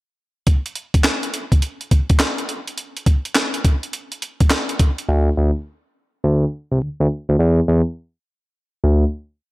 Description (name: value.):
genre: R&B, new jack swing.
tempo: 104 BPM.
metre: 4/4.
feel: swing 64% on 16ths.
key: unclear.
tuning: A4 = 442 Hz.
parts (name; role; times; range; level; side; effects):
breakbeat sampler-style drum kit; drums; 0.5-5.1 s; handclaps, hi-hat, kick drum, snare drum; -16 LUFS; equal; gated reverb.
smooth synth bass; bass; 5.1-9.0 s; C2 to E2; -15 LUFS; equal; none.
room: digital ambience.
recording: none.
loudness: -17 LUFS.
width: side -20 dB against mid.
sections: 0.5-9.5 A section.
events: none.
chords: none.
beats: | 0.47 1.05 1.62 2.20 | 2.78 3.35 3.93 4.51 | 5.08 5.66 6.24 6.82 | 7.39 7.97 8.55.